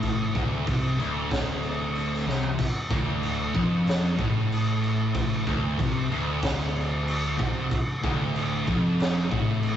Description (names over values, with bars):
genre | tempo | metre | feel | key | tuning
stoner and doom metal | 94 BPM | 4/4 | straight | D minor | A4 = 437 Hz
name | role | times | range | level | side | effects
fuzz guitar | riff | 0.0-9.8 s | D2 to C3 | -31 LUFS | left 5 dB | distortion
heavy high-gain guitar | riff | 0.0-9.8 s | D2 to C3 | -33 LUFS | right 1 dB | distortion
thick fuzz guitar | riff | 0.0-9.8 s | D2 to C3 | -28 LUFS | right 2 dB | distortion
overdriven picked electric bass | bass | 0.0-9.8 s | D1 to C2 | -36 LUFS | equal | none
raw garage drum kit | drums | 0.0-9.8 s | crash cymbal, kick drum, snare drum, splash cymbal, toms | -28 LUFS | equal | none
room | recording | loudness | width
moderate small room reverb, RT60 0.5 s | rough rehearsal-room recording, nothing above 7.9 kHz | -23 LUFS | side -10 dB against mid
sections
0.0-9.8 A section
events
drum fill 2.3-2.6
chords
0.0 Dm